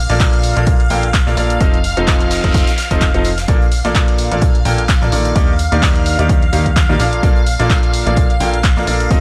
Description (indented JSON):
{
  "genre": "piano house",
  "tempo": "128 BPM",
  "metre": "4/4",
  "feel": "swing 56% on 16ths",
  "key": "Bb major",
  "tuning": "A4 = 443 Hz",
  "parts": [
    { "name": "string machine, violins", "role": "sustained chords", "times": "0.0-9.2 s", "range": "F5", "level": "-25 LUFS", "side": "equal", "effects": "ensemble chorus, sidechain pumping" },
    { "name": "plucky analog bass", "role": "bass", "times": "0.0-9.2 s", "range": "F1 to Eb2", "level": "-21 LUFS", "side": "equal", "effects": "sidechain pumping" },
    { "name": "bright grand piano", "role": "riff", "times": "0.1-9.2 s", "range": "Bb2 to G5", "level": "-21 LUFS", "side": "equal", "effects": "sidechain pumping" },
    { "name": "huge arena drum kit", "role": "drums", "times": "0.1-9.2 s", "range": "hi-hat, snare drum", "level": "-34 LUFS", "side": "equal", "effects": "none" },
    { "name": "punchy analog drum machine", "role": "drums", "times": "0.1-9.2 s", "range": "handclaps, hi-hat", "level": "-24 LUFS", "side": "equal", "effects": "none" },
    { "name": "electronic kick drum", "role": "drums", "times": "0.2-9.2 s", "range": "none", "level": "-17 LUFS", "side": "equal", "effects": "none" },
    { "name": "noise sweep", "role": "sound effects", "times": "1.9-3.5 s", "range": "none", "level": "-31 LUFS", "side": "equal", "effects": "none" }
  ],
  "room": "small room ambience",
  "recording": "dry, gritty hardware recording, cassette tape",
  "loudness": "-14 LUFS",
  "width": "mono",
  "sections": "0.0-9.2 A section",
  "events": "noise sweep 1.9-3.5",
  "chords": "0.0 Bbmaj7; 1.6 F7; 3.5 Bbmaj7; 5.4 Ebmaj7; 7.0 Bbmaj7"
}